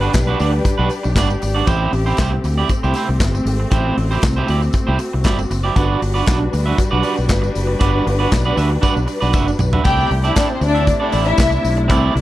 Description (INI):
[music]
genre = disco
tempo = 117 BPM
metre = 4/4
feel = straight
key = unclear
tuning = A4 = 439 Hz
[part]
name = electric guitar at the edge of break-up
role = accompaniment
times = 0.0-12.2 s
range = G3 to E5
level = -21 LUFS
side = right 5 dB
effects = none
[part]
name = clear studio string section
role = sustained chords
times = 0.0-12.2 s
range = C3 to B4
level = -23 LUFS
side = left 2 dB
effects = none
[part]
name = fingered electric bass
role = bass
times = 0.0-12.2 s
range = F#1 to D2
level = -18 LUFS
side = equal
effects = none
[part]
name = tambourine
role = percussion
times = 0.0-12.0 s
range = none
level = -36 LUFS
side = left 8 dB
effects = none
[part]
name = modern studio drum kit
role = drums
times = 0.1-12.2 s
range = handclaps, hi-hat, kick drum, snare drum, toms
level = -20 LUFS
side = equal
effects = none
[part]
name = warm studio violin section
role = second line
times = 9.9-11.6 s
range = C4 to G5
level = -19 LUFS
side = left 2 dB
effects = none
[sound]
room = light reverb, small room ambience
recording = dark, warm production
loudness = -14 LUFS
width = side -15 dB against mid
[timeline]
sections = 0.0-9.9 A section; 9.9-12.2 B section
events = drum fill 9.3-9.9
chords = 0.0 Gmaj7; 1.7 Am7; 5.8 Gmaj7; 9.9 C69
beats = 0.14 0.65 1.17 | 1.68 2.19 2.70 3.21 | 3.72 4.23 4.74 5.25 | 5.76 6.28 6.79 7.30 | 7.81 8.32 8.83 9.34 | 9.85 10.36 10.87 11.38 | 11.89